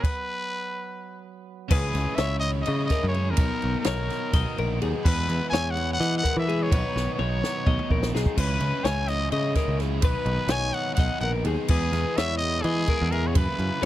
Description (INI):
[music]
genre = math rock and midwest emo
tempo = 253 BPM (eighths)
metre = 7/8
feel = straight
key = B major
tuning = A4 = 442 Hz
[part]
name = growling trumpet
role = melody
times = 0.0-13.9 s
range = G#4 to G#5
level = -29 LUFS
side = left 1 dB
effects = none
[part]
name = twangy electric guitar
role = accompaniment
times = 0.0-1.7 s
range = F#3 to B3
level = -40 LUFS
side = right 11 dB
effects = none
[part]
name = twelve-string electric guitar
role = arpeggios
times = 0.0-13.9 s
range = B3 to B5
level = -32 LUFS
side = left 7 dB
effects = none
[part]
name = compact cocktail drum kit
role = drums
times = 0.0-13.9 s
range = crash cymbal, kick drum, ride cymbal, snare drum, toms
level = -25 LUFS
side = equal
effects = none
[part]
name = biting overdriven guitar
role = riff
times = 1.7-13.9 s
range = F#2 to E4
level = -32 LUFS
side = right 3 dB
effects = none
[part]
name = picked electric bass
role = bass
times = 1.7-13.9 s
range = A#1 to E3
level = -26 LUFS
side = equal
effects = none
[sound]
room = little or no reverb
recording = dry, close 1970s-style studio recording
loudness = -22 LUFS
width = side -14 dB against mid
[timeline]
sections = 0.0-1.7 A section; 1.7-13.9 B section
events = stop 0.0-1.7; drum fill 7.0-8.4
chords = 0.0 B5; 1.7 C#m9; 3.4 Bmaj9; 5.1 Emaj7#11; 6.7 Bmaj9; 8.4 C#m9; 10.0 Bmaj9; 11.7 Emaj7#11; 13.3 F#7sus4